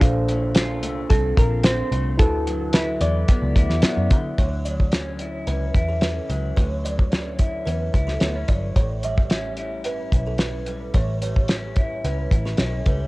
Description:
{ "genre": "indie pop, bedroom pop", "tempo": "110 BPM", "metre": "4/4", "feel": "straight", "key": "D major", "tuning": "A4 = 435 Hz", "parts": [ { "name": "soft electric-piano-like synth keys", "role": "melody", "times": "0.0-4.1 s", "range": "F4 to D5", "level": "-27 LUFS", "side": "equal", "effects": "analog chorus, cassette tape, analog delay" }, { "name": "electric guitar through a small old amp", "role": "accompaniment", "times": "0.0-13.1 s", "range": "A2 to F4", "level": "-30 LUFS", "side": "left 2 dB", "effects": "wide subtle chorus, warbly pitch drift" }, { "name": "tine electric piano", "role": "accompaniment", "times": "0.0-4.4 s", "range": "D4 to C5", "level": "-28 LUFS", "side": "right 1 dB", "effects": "cassette tape" }, { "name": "vintage muted picked electric bass", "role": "bass", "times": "0.0-13.1 s", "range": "G1 to D3", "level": "-25 LUFS", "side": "equal", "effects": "transformer saturation" }, { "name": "cloth-damped thuddy drum kit", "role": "drums", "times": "0.0-13.0 s", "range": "hi-hat, kick drum, snare drum", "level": "-19 LUFS", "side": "equal", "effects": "cassette tape" }, { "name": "buzzing kalimba", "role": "second line", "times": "4.4-13.0 s", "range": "A4 to E5", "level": "-31 LUFS", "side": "right 3 dB", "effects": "ensemble chorus, analog delay" } ], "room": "small room reverb", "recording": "home recording on cassette", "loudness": "-19 LUFS", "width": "side -21 dB against mid", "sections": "0.0-4.4 A section; 4.4-13.1 B section", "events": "none", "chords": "0.0 Bbmaj9; 2.2 D69; 4.4 Dmaj9; 8.8 A7", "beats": "| 0.01 0.56 1.10 1.65 | 2.19 2.74 3.29 3.83 | 4.38 4.93 5.47 6.02 | 6.57 7.12 7.67 8.21 | 8.76 9.31 9.86 10.40 | 10.95 11.50 12.04 12.59" }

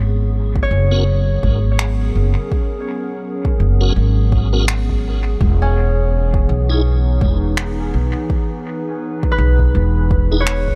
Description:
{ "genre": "ambient dub", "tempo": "83 BPM", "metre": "4/4", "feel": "swing 58% on 16ths", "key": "G# minor", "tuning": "A4 = 439 Hz", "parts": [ { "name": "warbly tape-like pad", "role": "sustained chords", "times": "0.0-10.8 s", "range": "E3 to B4", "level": "-27 LUFS", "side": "equal", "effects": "chorus, built-in reverb" }, { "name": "Celtic harp", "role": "arpeggios", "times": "0.0-10.8 s", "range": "C#4 to C#5", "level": "-29 LUFS", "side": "equal", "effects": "dub echo" }, { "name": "upright bass", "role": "bass", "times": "0.0-10.8 s", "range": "E1 to B1", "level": "-18 LUFS", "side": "equal", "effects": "tube saturation" }, { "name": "electronic kick drum", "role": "drums", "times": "0.6-10.8 s", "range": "none", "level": "-21 LUFS", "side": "equal", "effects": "overdrive" }, { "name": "tonewheel organ", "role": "stabs", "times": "0.9-10.4 s", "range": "B3 to A#4", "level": "-28 LUFS", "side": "equal", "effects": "overdrive, chorus vibrato, fast rotary speaker, dub echo" }, { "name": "electronic finger snaps", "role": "drums", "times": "1.8-10.6 s", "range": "none", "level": "-28 LUFS", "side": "equal", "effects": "dub echo" } ], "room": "little or no reverb", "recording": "faint mains hum", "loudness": "-17 LUFS", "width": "mono", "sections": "0.0-10.8 A section", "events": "none", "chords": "0.0 G#m11; 5.4 Emaj7", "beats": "0.35 1.07 1.79 | 2.52 3.24 3.96 4.69 | 5.41 6.13 6.86 7.58 | 8.30 9.02 9.75 10.47" }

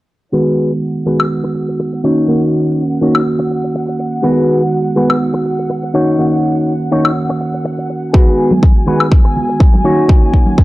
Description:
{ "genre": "filtered disco house", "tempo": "123 BPM", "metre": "4/4", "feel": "swing 55% on 16ths", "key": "G# minor", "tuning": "A4 = 440 Hz", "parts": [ { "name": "reed electric piano", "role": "accompaniment", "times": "0.3-10.6 s", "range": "D#3 to F#4", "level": "-15 LUFS", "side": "right 2 dB", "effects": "phaser, sidechain pumping, low-pass filter" }, { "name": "rich symphonic string section", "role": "sustained chords", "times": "0.3-10.6 s", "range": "F#5 to G#5", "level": "-25 LUFS", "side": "left 1 dB", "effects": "sidechain pumping, low-pass filter" }, { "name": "electric guitar with an envelope filter", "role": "riff", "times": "0.3-10.6 s", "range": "D#4 to C#5", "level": "-17 LUFS", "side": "left 2 dB", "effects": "sidechain pumping, low-pass filter" }, { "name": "woodblock", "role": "drums", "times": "1.2-9.1 s", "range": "none", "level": "-17 LUFS", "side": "left 3 dB", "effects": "overdrive, sidechain pumping on perc" }, { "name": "electronic kick drum", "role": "drums", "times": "8.1-10.6 s", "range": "none", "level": "-8 LUFS", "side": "equal", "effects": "none" }, { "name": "maracas and congas", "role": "percussion", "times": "8.1-10.6 s", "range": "none", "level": "-19 LUFS", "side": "equal", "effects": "sidechain pumping on perc, low-pass filter on perc" } ], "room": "little or no reverb", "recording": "dry, gritty hardware recording", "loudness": "-11 LUFS", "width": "side -18 dB against mid", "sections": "0.3-10.6 A section", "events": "filter sweep 0.3-10.6", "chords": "0.3 G#m7; 2.0 D#m7; 4.2 G#m7; 5.9 D#m7; 8.1 G#m7; 9.8 D#m7", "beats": "| 0.34 0.82 1.31 1.80 | 2.29 2.77 3.26 3.75 | 4.24 4.72 5.21 5.70 | 6.19 6.68 7.16 7.65 | 8.14 8.63 9.12 9.60 | 10.09 10.58" }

